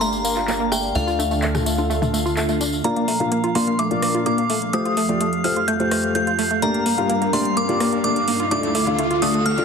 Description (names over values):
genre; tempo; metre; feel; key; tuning
progressive house; 127 BPM; 4/4; straight; Bb major; A4 = 440 Hz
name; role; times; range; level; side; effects
glassy synth bell; melody; 0.0-9.6 s; F5 to G6; -24 LUFS; left 1 dB; chorus, low-pass filter, tape echo
lush unison pad; sustained chords; 0.0-9.6 s; D2 to Bb4; -28 LUFS; right 1 dB; chorus, phaser
wide unison pluck; arpeggios; 0.0-9.5 s; A3 to F4; -24 LUFS; right 1 dB; ping-pong delay
warm concert grand piano; stabs; 0.0-9.6 s; A3 to F5; -25 LUFS; left 4 dB; low-pass filter, ping-pong delay
tight sequencer bass; bass; 0.0-2.8 s; G1 to D2; -27 LUFS; right 1 dB; none
tambourine; percussion; 0.0-2.8 s; none; -30 LUFS; left 3 dB; none
drifting glass-harmonics texture; texture; 0.0-9.6 s; F5; -34 LUFS; right 1 dB; chorus, built-in reverb
house drum kit; drums; 0.4-9.6 s; handclaps, hi-hat, rim click; -28 LUFS; right 1 dB; overdrive, high-pass filter on snare, low-pass filter on snare, high-pass filter on hats, low-pass filter on hats, high-pass filter on room, low-pass filter on room
punchy analog drum machine; percussion; 0.7-2.7 s; congas, rim click, toms; -29 LUFS; left 3 dB; none
riser; sound effects; 4.6-9.6 s; none; -30 LUFS; right 3 dB; none
room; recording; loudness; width
light reverb, digital ambience; dense, heavily limited modern master; -18 LUFS; side -6 dB against mid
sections
0.0-2.8 A section; 2.8-9.6 B section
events
build-up 2.8-9.6; filter sweep on grand piano 2.8-9.6; filter sweep on synth bell 2.8-9.6; riser 4.6-9.6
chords
0.0 Gm; 1.0 Dm; 2.8 Bb; 4.7 Fadd9; 6.6 Gm; 8.5 Dm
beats
0.01 0.48 | 0.95 1.43 1.90 2.37 | 2.84 3.32 3.79 4.26 | 4.73 5.21 5.68 6.15 | 6.62 7.10 7.57 8.04 | 8.51 8.98 9.46